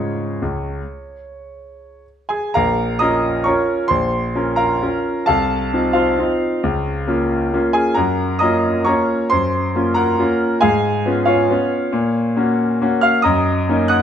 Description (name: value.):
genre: classical, piano waltz.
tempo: 106-145 BPM.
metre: 3/4.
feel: rubato.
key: Bb minor.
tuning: A4 = 439 Hz.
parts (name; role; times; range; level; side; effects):
clear grand piano; solo; 0.0-14.0 s; Bb1 to Gb6; -16 LUFS; equal; none.
room: moderate recital hall reverb, RT60 1.4 s.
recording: close, detailed microphones.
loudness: -15 LUFS.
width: side -8 dB against mid.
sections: 0.0-2.6 A section; 2.6-14.0 B section.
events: none.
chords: 0.0 Db; 2.6 Bbm; 5.3 F7/C; 6.6 Bbm/Db; 8.0 Gbmaj7; 10.6 Db7/Ab; 11.9 Gb/Bb; 13.2 Ebm7/Gb.